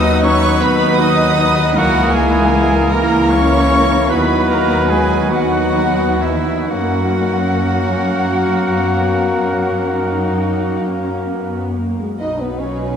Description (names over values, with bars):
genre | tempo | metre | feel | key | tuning
classical, slow romantic movement for symphony orchestra | 40-54 BPM (dotted quarters) | 12/8 | rubato | B major | A4 = 441 Hz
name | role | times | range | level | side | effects
warm chamber violin section | melody | 0.0-13.0 s | B4 to D#6 | -24 LUFS | right 1 dB | none
concert flute | second line | 0.0-10.8 s | E5 to D#6 | -25 LUFS | left 3 dB | none
warm clarinet | second line | 0.0-11.8 s | D#4 to F#4 | -24 LUFS | left 4 dB | none
warm oboe | second line | 0.0-10.8 s | E4 to D#5 | -24 LUFS | right 3 dB | none
warm symphonic violin section | second line | 0.0-13.0 s | E4 to D#5 | -27 LUFS | equal | none
clear bassoon | accompaniment | 0.0-11.8 s | A#3 to B3 | -23 LUFS | left 4 dB | none
warm French horn section | sustained chords | 0.0-13.0 s | E3 to E4 | -20 LUFS | equal | none
bright trumpet | stabs | 0.0-11.8 s | A#4-21c to B4 | -23 LUFS | right 3 dB | none
warm chamber double bass section | bass | 0.0-13.0 s | B1 to F#2 | -21 LUFS | equal | none
warm studio cello section | bass | 0.0-13.0 s | B2 to D#4 | -23 LUFS | right 2 dB | none
warm studio viola section | accompaniment | 0.2-13.0 s | F#3 to E4 | -24 LUFS | equal | none
room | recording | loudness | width
wet cathedral reverb, RT60 6.4 s | in a vast, echoing space | -13 LUFS | side -7 dB against mid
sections
0.0-12.2 A section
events
none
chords
0.0 B/D#; 1.8 A#dim/C#; 4.1 B/D#; 6.7 F#; 12.2 B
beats
0.61 | 1.76 2.94 4.11 5.31 | 6.70 8.12 9.50 10.86 | 12.20